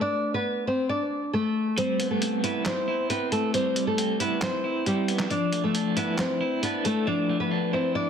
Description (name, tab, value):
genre	hip hop, trap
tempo	136 BPM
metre	4/4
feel	half-time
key	unclear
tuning	A4 = 437 Hz
part	nylon-string guitar	melody	0.0-8.1 s	G3 to D5	-26 LUFS	left 1 dB	low-pass filter, tape echo
part	electric guitar at the edge of break-up	accompaniment	1.8-8.1 s	F3 to E4	-28 LUFS	right 2 dB	tremolo, low-pass filter
part	lo-fi sampler-style drum kit	drums	1.8-7.0 s	handclaps, hi-hat, snare drum	-32 LUFS	equal	none
room	moderate digital room reverb, RT60 1.0 s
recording	dense, heavily limited modern master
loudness	-24 LUFS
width	side -7 dB against mid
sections	0.0-8.1 A section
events	kick muted 1.8-8.1; drums muted 7.1-8.1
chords	0.0 D5; 1.8 Cmaj7; 5.3 Dmadd9